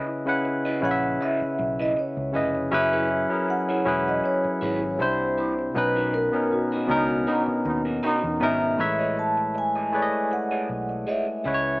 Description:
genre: soul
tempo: 79 BPM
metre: 4/4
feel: swing 54% on 16ths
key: unclear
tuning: A4 = 437 Hz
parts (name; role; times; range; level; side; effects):
- barky tine electric piano; accompaniment; 0.0-11.8 s; B2 to F#5; -24 LUFS; left 1 dB; overdrive
- electric guitar through a small old amp; riff; 0.0-11.7 s; D#4 to D#5; -33 LUFS; right 2 dB; phaser
- vintage muted fingered electric bass; bass; 0.8-11.8 s; E1 to E2; -34 LUFS; equal; none
- vibraphone with soft mallets; melody; 0.9-11.8 s; F#4 to A5; -27 LUFS; equal; tape echo
- brilliant trombone section; stabs; 6.9-8.6 s; D#3 to D#4; -27 LUFS; right 1 dB; none
room: light reverb, small room ambience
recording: small speaker sound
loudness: -22 LUFS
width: side -24 dB against mid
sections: 0.0-8.8 A section; 8.8-11.8 B section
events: vibraphone solo 0.0-8.8; band accent 5.8-8.8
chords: 0.0 C#m9; 2.7 F#9sus4; 5.0 Cmaj7; 5.8 Bmaj7; 8.8 Amaj9#11

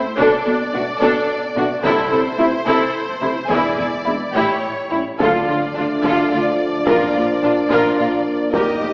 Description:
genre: cinematic, epic orchestral film score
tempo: 72 BPM (dotted quarters)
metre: 6/8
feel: straight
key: D phrygian from 5.2 s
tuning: A4 = 440 Hz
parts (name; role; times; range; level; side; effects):
- rich symphonic violin section; melody; 0.0-8.9 s; C5 to Eb5; -24 LUFS; equal; none
- dark symphonic violin section; second line; 0.2-8.9 s; D4 to Bb4; -20 LUFS; equal; none
- rich symphonic viola section; accompaniment; 0.2-8.9 s; D4 to G4; -20 LUFS; equal; none
- warm symphonic cello section; bass; 0.2-8.9 s; Eb2 to D3; -25 LUFS; equal; none
- warm symphonic double bass section; bass; 0.2-8.9 s; E1 to Eb2; -32 LUFS; equal; none
- dark French horn section; sustained chords; 0.7-8.9 s; G3 to E4; -24 LUFS; equal; none
- solo taiko drums; drums; 1.8-8.9 s; none; -25 LUFS; equal; none
- mellow trombone section; sustained chords; 5.2-8.9 s; Bb2 to G3; -24 LUFS; equal; none
- timpani; percussion; 5.2-6.0 s; D3; -32 LUFS; equal; none
room: wet scoring stage reverb, RT60 1.8 s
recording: heard from further back in the room, small speaker sound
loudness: -15 LUFS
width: side -30 dB against mid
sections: 0.0-5.2 A section; 5.2-8.9 B section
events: none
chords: 0.2 Bm7; 1.9 Am/C; 3.5 E7; 4.4 A7; 5.2 Dm; 6.9 Bb

